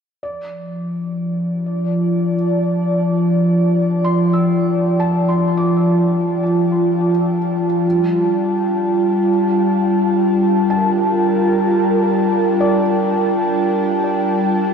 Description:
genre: ambient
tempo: 63 BPM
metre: 4/4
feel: straight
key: unclear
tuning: A4 = 435 Hz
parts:
  - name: airy breathy pad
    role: sustained chords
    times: 0.7-14.7 s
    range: F3 to A5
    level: -15 LUFS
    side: equal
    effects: chorus, shimmer reverb
  - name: felt-muted upright piano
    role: arpeggios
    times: 0.2-14.7 s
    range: D5 to E6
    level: -28 LUFS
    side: left 1 dB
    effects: ping-pong delay, shimmer reverb
  - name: bowed-like drone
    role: drone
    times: 0.9-14.7 s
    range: G3 to D4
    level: -32 LUFS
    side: right 2 dB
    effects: built-in reverb
room: wet concert hall reverb, RT60 2.4 s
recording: none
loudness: -14 LUFS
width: side -6 dB against mid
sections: 0.2-14.7 A section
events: fade-in on felt piano 0.2-14.7; fade-in on synth drone 0.2-14.7; filter sweep on analog synth pad 0.2-14.7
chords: 0.2 F69; 7.8 Gm9

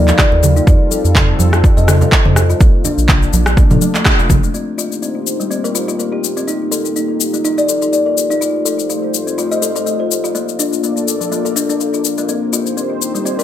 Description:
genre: afro house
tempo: 124 BPM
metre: 4/4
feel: swing 55% on 16ths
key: C dorian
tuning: A4 = 441 Hz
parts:
  - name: dark analog pad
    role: sustained chords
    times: 0.0-13.4 s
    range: G3 to D5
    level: -22 LUFS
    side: left 2 dB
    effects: chorus, sidechain pumping
  - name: kalimba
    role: arpeggios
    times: 0.0-13.4 s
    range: F3 to Eb5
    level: -18 LUFS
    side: left 2 dB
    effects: sidechain pumping, low-pass filter, ping-pong delay
  - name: round analog bass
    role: bass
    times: 0.0-4.5 s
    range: F1 to Bb2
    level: -14 LUFS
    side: equal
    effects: sidechain pumping
  - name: afro-pop drum kit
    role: drums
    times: 0.1-13.4 s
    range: cabasa, handclaps, rim click, toms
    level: -18 LUFS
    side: left 2 dB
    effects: none
  - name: congas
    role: percussion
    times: 0.1-4.4 s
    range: none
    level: -21 LUFS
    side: right 5 dB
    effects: none
  - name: electronic kick drum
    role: drums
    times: 0.2-4.4 s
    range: none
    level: -12 LUFS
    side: equal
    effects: overdrive
room: light reverb, digital ambience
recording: none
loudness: -12 LUFS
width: side -11 dB against mid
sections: 0.0-4.5 A section; 4.5-13.4 B section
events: filter sweep on kalimba 0.0-4.5; band accent 4.1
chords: 0.0 Ebadd9; 0.7 Fadd9; 2.6 Bbmaj7; 4.5 Cm7; 6.5 Ebadd9; 8.4 Fadd9; 10.3 Bbmaj7; 12.3 Cm7

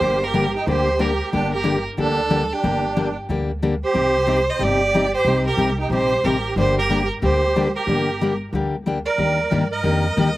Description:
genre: acoustic string swing (jazz manouche)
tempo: 183 BPM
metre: 4/4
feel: swing 61% on 8ths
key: G minor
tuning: A4 = 440 Hz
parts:
  - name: clear violin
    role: melody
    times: 0.0-10.4 s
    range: G4 to Eb5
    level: -22 LUFS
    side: right 2 dB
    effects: none
  - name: musette accordion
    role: second line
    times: 0.0-10.3 s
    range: D4 to C5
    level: -26 LUFS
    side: right 4 dB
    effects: slapback echo
  - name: picked steel-string acoustic guitar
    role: accompaniment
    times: 0.0-10.3 s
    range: C3 to G4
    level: -22 LUFS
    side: left 3 dB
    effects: none
  - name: upright bass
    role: bass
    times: 0.0-10.4 s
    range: G1 to G2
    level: -26 LUFS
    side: equal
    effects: none
room: little or no reverb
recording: recorded outdoors, with no room sound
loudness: -18 LUFS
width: side -16 dB against mid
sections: 0.0-10.4 A section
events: none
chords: 0.0 Gm; 4.0 Cm; 6.6 Gm; 9.2 Ebmaj7

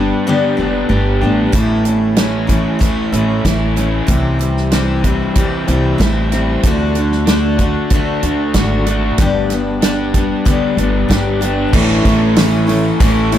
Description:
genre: folk rock and heartland rock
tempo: 94 BPM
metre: 4/4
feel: straight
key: A mixolydian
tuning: A4 = 440 Hz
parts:
  - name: picked steel-string acoustic guitar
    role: accompaniment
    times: 0.0-13.4 s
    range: G2 to G4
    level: -18 LUFS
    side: left 4 dB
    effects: analog delay
  - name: raw garage guitar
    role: riff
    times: 0.0-13.4 s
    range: G2 to G4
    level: -19 LUFS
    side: right 1 dB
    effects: overdrive, analog delay
  - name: upright bass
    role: bass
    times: 0.0-13.4 s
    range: F#1 to D2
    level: -17 LUFS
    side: right 1 dB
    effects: none
  - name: natural country drum kit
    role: drums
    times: 1.5-13.4 s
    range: crash cymbal, hi-hat, kick drum, snare drum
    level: -16 LUFS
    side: right 1 dB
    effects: analog delay
  - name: mellow tonewheel organ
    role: sustained chords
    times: 11.7-13.4 s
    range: A4 to C#6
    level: -23 LUFS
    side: right 1 dB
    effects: slow rotary speaker
  - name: tambourine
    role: percussion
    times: 12.4-12.5 s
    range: none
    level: -32 LUFS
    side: right 8 dB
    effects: none
room: light reverb, studio reverb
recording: echo-heavy mix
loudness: -12 LUFS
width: side -11 dB against mid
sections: 0.0-11.7 A section; 11.7-13.4 B section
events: none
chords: 0.0 G; 1.5 A; 4.1 C; 6.6 D; 9.2 G; 11.7 A

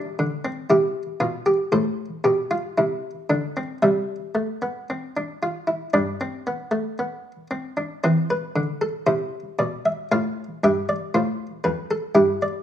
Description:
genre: classical, baroque-style 3-part fugue for harpsichord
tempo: 58 BPM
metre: 4/4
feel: straight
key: C major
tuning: A4 = 438 Hz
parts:
  - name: buff-stop harpsichord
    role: solo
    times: 0.0-12.6 s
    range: F2 to F5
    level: -21 LUFS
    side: equal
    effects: none
room: moderate large studio reverb, RT60 1.2 s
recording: minimal, uncompressed stereo recording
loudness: -21 LUFS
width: side -10 dB against mid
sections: 0.0-8.0 A section; 8.0-12.6 B section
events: none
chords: 0.0 G; 1.7 Am; 3.8 Gsus4/C; 5.9 G; 8.0 C; 10.1 F

